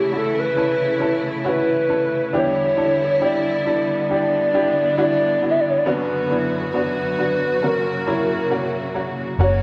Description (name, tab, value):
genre	pop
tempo	68 BPM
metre	4/4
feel	straight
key	unclear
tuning	A4 = 440 Hz
part	hollow clarinet-like synth lead	melody	0.0-9.6 s	G4 to E5	-22 LUFS	equal	chorus
part	bright upright piano	accompaniment	0.0-9.6 s	F#1 to B4	-26 LUFS	equal	none
part	rich studio string section	sustained chords	0.0-9.6 s	F#2 to F#4	-28 LUFS	equal	none
part	vintage muted fingered electric bass	bass	9.4-9.6 s	F#1	-19 LUFS	equal	none
room	wet large studio reverb, RT60 1.1 s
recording	band playing live in one room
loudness	-20 LUFS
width	mono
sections	0.0-9.4 A section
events	none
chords	0.0 A/C#; 2.3 Em7; 5.9 Bm/F#; 7.6 F#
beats	0.57 1.46 | 2.34 3.22 4.10 4.98 | 5.87 6.75 7.63 8.51 | 9.40